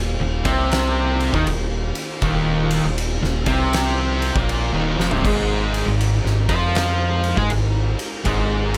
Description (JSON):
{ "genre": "stoner and doom metal", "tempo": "80 BPM", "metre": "4/4", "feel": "swing 65% on 8ths", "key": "unclear", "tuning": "A4 = 440 Hz", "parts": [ { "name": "soft string machine", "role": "sustained chords", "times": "0.0-8.8 s", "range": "Eb3 to Bb4", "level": "-37 LUFS", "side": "equal", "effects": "none" }, { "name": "raw garage guitar", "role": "riff", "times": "0.0-8.8 s", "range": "C2 to Ab4", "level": "-27 LUFS", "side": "equal", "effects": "overdrive" }, { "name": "thick fuzz guitar", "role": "riff", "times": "0.0-8.8 s", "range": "C2 to Ab4", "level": "-27 LUFS", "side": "equal", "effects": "distortion" }, { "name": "thick fuzz guitar", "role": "riff", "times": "0.0-8.8 s", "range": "C2 to Ab4", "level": "-28 LUFS", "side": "equal", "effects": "none" }, { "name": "round analog bass", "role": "bass", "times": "0.0-8.8 s", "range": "C1 to Ab2", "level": "-26 LUFS", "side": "equal", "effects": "overdrive" }, { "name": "oversized low-tuned drum kit", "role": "drums", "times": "0.4-8.8 s", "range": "crash cymbal, kick drum, ride cymbal, snare drum, toms", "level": "-27 LUFS", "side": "equal", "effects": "none" } ], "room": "light reverb", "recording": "none", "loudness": "-20 LUFS", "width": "mono", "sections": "0.0-8.8 A section", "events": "drum fill 4.9-5.2", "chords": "0.0 Eb5; 5.2 Ab5" }